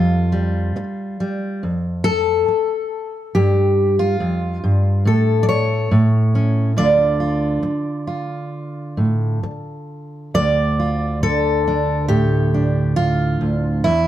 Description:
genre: folk, solo fingerstyle acoustic guitar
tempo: 69 BPM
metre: 4/4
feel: rubato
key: D minor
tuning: A4 = 440 Hz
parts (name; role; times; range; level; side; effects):
- fingerpicked steel-string acoustic guitar; solo; 0.0-14.1 s; D2 to D5; -16 LUFS; equal; slapback echo
room: light reverb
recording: dark, warm production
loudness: -16 LUFS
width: side -12 dB against mid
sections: 0.0-10.3 A section; 10.3-14.1 B section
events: none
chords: 0.0 Fsus2; 1.6 N.C.; 3.3 Fsus2; 5.1 N.C.; 5.9 A; 6.8 Dm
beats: 0.73 1.61 2.47 | 3.34 4.20 5.06 5.91 | 6.76 7.63 8.52 9.44 | 10.35 11.23 12.11 12.98 | 13.85

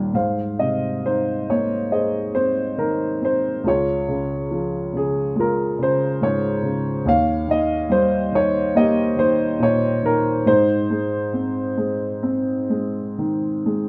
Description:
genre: classical, lyrical solo piano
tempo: 70 BPM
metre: 4/4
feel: uneven beats, rubato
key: Ab major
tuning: A4 = 440 Hz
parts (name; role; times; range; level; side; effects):
- dark grand piano; solo; 0.0-13.9 s; Eb1 to G6; -21 LUFS; equal; none
room: light reverb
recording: none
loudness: -21 LUFS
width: mono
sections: 0.1-13.9 A section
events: none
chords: 0.1 Abadd9; 3.7 Db; 7.1 Eb7; 10.5 Ab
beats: | 0.14 1.04 1.92 2.78 | 3.65 4.51 5.37 6.21 | 7.05 7.90 8.74 9.60 | 10.47 11.34 12.23 13.18

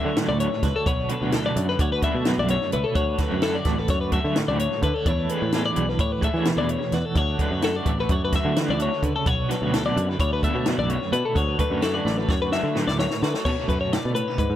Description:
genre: math rock and midwest emo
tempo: 257 BPM (eighths)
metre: 9/8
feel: straight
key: D major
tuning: A4 = 442 Hz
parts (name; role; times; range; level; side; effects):
- twelve-string electric guitar; accompaniment; 0.0-14.6 s; E2 to F#4; -30 LUFS; right 5 dB; tremolo
- twelve-string electric guitar; arpeggios; 0.0-14.6 s; A4 to E5; -26 LUFS; left 4 dB; dub echo
- raw garage guitar; riff; 0.0-13.1 s; E3 to G#4; -29 LUFS; right 1 dB; overdrive, tremolo
- picked electric bass; bass; 0.1-14.6 s; A1 to E3; -26 LUFS; equal; none
- compact cocktail drum kit; drums; 0.2-14.5 s; crash cymbal, hi-hat, kick drum, snare drum; -26 LUFS; equal; dub echo
room: light reverb, small room ambience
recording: echo-heavy mix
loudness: -21 LUFS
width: side -11 dB against mid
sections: 0.0-13.5 A section; 13.5-14.6 B section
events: drum fill 12.1-13.5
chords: 0.0 Dmaj7; 0.9 Bm7; 3.0 Dmaj7; 5.1 E7sus4; 7.2 Dmaj7; 9.3 Bm7; 11.4 Dmaj7; 13.5 Bm9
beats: 0.16 0.40 0.63 | 0.86 1.10 1.33 1.57 1.80 2.03 2.27 2.50 2.73 | 2.97 3.20 3.44 3.67 3.90 4.14 4.37 4.60 4.84 | 5.07 5.30 5.54 5.77 6.00 6.24 6.47 6.70 6.93 | 7.17 7.40 7.63 7.87 8.10 8.33 8.56 8.80 9.03 | 9.26 9.50 9.73 9.96 10.20 10.43 10.66 10.89 11.13 | 11.36 11.59 11.83 12.06 12.29 12.53 12.76 12.99 13.22 | 13.46 13.69 13.92 14.16 14.39

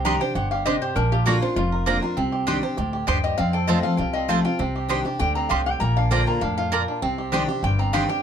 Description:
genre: bluegrass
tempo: 198 BPM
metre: 4/4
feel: straight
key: C dorian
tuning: A4 = 440 Hz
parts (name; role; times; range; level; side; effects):
- lap resonator guitar; second line; 0.0-8.2 s; F4 to Bb5; -28 LUFS; left 6 dB; none
- picked steel-string acoustic guitar; accompaniment; 0.0-8.2 s; F2 to G4; -25 LUFS; left 2 dB; none
- bluegrass banjo; arpeggios; 0.0-8.2 s; C4 to C5; -27 LUFS; right 4 dB; none
- mandolin; stabs; 0.0-8.0 s; Bb3 to C6; -25 LUFS; right 5 dB; none
- upright bass; bass; 0.0-8.0 s; F1 to F2; -26 LUFS; right 1 dB; none
room: light reverb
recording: close, detailed microphones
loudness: -20 LUFS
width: side -8 dB against mid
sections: 0.0-8.2 A section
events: resonator guitar played with a steel bar solo 0.0-8.2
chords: 0.0 Cmadd9; 1.0 Bb; 2.2 Cmadd9; 3.4 F; 4.6 Cmadd9; 5.8 Bb; 7.0 Cmadd9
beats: 0.05 0.35 0.66 | 0.96 1.26 1.56 1.87 | 2.17 2.47 2.78 3.08 | 3.38 3.69 3.99 4.29 | 4.60 4.90 5.21 5.51 | 5.81 6.12 6.42 6.72 | 7.03 7.33 7.63 7.93

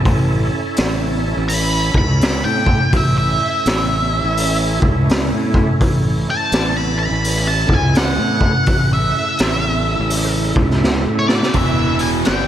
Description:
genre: blues rock power trio and southern rock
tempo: 84 BPM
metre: 4/4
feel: swing 63% on 8ths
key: unclear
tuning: A4 = 436 Hz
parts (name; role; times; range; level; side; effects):
- overdriven tonewheel organ; sustained chords; 0.0-12.5 s; C#3 to A4; -25 LUFS; right 3 dB; slow rotary speaker, chorus vibrato
- fuzz fingered electric bass; bass; 0.0-12.5 s; E1 to A2; -20 LUFS; equal; overdrive
- raw garage drum kit; drums; 0.1-12.5 s; hi-hat, kick drum, snare drum; -17 LUFS; equal; none
- octave-fuzz lead guitar; melody; 1.5-12.5 s; C#5 to B5; -20 LUFS; equal; wah, distortion, slapback echo
- cranked stack guitar; riff; 11.5-12.5 s; E2 to G3; -20 LUFS; right 1 dB; overdrive, slapback echo
room: moderate lush hall reverb, RT60 2.8 s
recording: big arena sound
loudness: -14 LUFS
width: side -11 dB against mid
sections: 0.0-11.6 A section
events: lead electric guitar solo 0.0-11.6; drum fill 10.8-11.6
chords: 0.0 A; 11.6 E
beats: | 0.06 0.78 1.50 2.22 | 2.94 3.66 4.38 5.09 | 5.81 6.53 7.25 7.96 | 8.68 9.40 10.12 10.84 | 11.56 12.28

